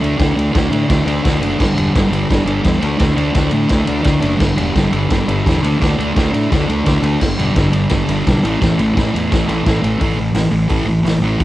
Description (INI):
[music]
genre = garage rock duo or trio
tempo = 171 BPM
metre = 4/4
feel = straight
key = unclear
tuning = A4 = 438 Hz
[part]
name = fuzz guitar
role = riff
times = 0.0-11.4 s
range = G2 to D4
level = -16 LUFS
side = equal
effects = distortion, cassette tape
[part]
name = fuzz fingered electric bass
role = bass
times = 0.0-11.4 s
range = E1 to A2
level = -20 LUFS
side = equal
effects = overdrive
[part]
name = raw garage drum kit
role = drums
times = 0.0-11.4 s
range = crash cymbal, hi-hat, kick drum, ride cymbal, snare drum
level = -18 LUFS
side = equal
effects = cassette tape
[sound]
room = little or no reverb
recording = home recording on cassette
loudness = -13 LUFS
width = side -15 dB against mid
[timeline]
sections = 0.0-10.0 A section; 10.0-11.4 B section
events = none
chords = 0.0 D5; 1.6 G5; 2.8 D5; 4.4 G5; 5.6 D5; 7.2 G5; 8.4 A5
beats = | 0.18 0.54 0.89 1.24 | 1.59 1.95 2.30 2.65 | 3.00 3.35 3.70 4.06 | 4.41 4.76 5.11 5.46 | 5.81 6.16 6.51 6.86 | 7.21 7.56 7.91 8.26 | 8.61 8.96 9.31 9.66 | 10.01 10.36 10.71 11.06 | 11.41